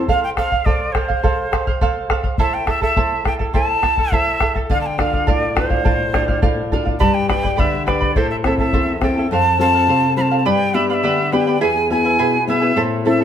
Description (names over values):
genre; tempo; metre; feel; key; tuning
andean folk, Andean ensemble; 104 BPM; 2/4; straight; unclear; A4 = 445 Hz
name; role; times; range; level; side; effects
charango; accompaniment; 0.0-13.2 s; E4 to B5; -21 LUFS; right 4 dB; none
nylon-string guitar; accompaniment; 0.0-0.1, 4.7-13.2 s; E2 to B4; -20 LUFS; left 3 dB; none
breathy bright quena; melody; 0.1-13.2 s; C5 to B5; -20 LUFS; equal; none
bombo; percussion; 0.1-9.2 s; none; -20 LUFS; equal; none
room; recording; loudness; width
wet stone room reverb, RT60 1.2 s; band playing live in one room; -15 LUFS; side -9 dB against mid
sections
0.1-9.3 A section; 9.3-13.2 B section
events
none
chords
0.1 F; 2.4 Am; 4.7 Dm; 7.0 G; 8.2 Am; 9.3 F; 10.5 G; 11.6 E